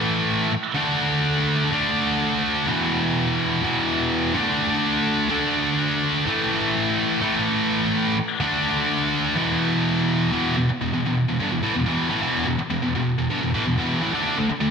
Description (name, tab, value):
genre	rock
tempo	126 BPM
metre	4/4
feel	straight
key	unclear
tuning	A4 = 439 Hz
part	scooped high-gain guitar	solo	0.0-14.7 s	E2 to D4	-20 LUFS	equal	distortion, slapback echo
room	wet lush hall reverb, RT60 2.1 s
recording	big arena sound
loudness	-20 LUFS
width	side -6 dB against mid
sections	0.0-10.3 A section; 10.3-14.7 B section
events	none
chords	0.0 A5; 0.8 D5; 2.7 E5; 4.3 D5; 6.3 A5; 8.4 D5; 9.4 E5; 14.1 D5